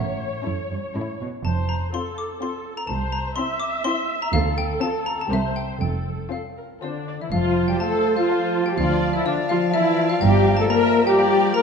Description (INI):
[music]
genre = cinematic, playful, whimsical film cue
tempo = 123 BPM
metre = 3/4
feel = uneven beats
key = F major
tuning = A4 = 440 Hz
[part]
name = xylophone with wooden mallets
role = melody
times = 0.0-11.6 s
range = D5 to D6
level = -30 LUFS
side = left 4 dB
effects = none
[part]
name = warm studio viola section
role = accompaniment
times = 0.0-11.6 s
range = D4 to E5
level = -24 LUFS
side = equal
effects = none
[part]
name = clear studio double bass section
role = bass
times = 0.0-10.6 s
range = F1 to D2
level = -28 LUFS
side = right 3 dB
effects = none
[part]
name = rich studio cello section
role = bass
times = 0.0-10.6 s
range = C2 to B2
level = -26 LUFS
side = right 3 dB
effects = none
[part]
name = warm studio violin section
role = melody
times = 0.4-11.6 s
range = A4 to F5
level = -34 LUFS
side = left 6 dB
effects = none
[part]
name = warm studio violin section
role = second line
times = 0.4-11.5 s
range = C4 to Bb5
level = -33 LUFS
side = left 3 dB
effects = none
[part]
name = concert flute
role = second line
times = 6.8-11.6 s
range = D5 to Bb5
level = -29 LUFS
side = left 3 dB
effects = none
[part]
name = mellow French horn section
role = sustained chords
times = 6.8-11.6 s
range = D3 to Bb3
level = -24 LUFS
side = left 4 dB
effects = none
[part]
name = mellow oboe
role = second line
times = 7.3-11.6 s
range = A5 to Bb5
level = -31 LUFS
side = right 3 dB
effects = none
[part]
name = warm clarinet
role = second line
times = 7.3-11.6 s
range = C5 to D5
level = -31 LUFS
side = left 3 dB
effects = none
[part]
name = mellow bassoon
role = accompaniment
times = 7.3-11.6 s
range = F3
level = -30 LUFS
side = left 1 dB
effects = none
[sound]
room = wet concert hall reverb, RT60 2.0 s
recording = dark, warm production, nothing above 10.5 kHz, faint mains hum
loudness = -19 LUFS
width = side -6 dB against mid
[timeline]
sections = 0.0-7.3 A section; 7.3-11.6 B section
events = none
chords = 0.0 A; 1.4 F; 2.9 C; 4.3 Dm7; 5.3 C7; 5.8 F; 8.8 Dm; 10.2 Gm7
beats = 0.44 0.94 | 1.44 1.93 2.42 | 2.90 3.37 3.86 | 4.34 4.82 5.31 | 5.81 6.33 6.83 | 7.33 7.82 8.30 | 8.78 9.26 9.74 | 10.23 10.71 11.19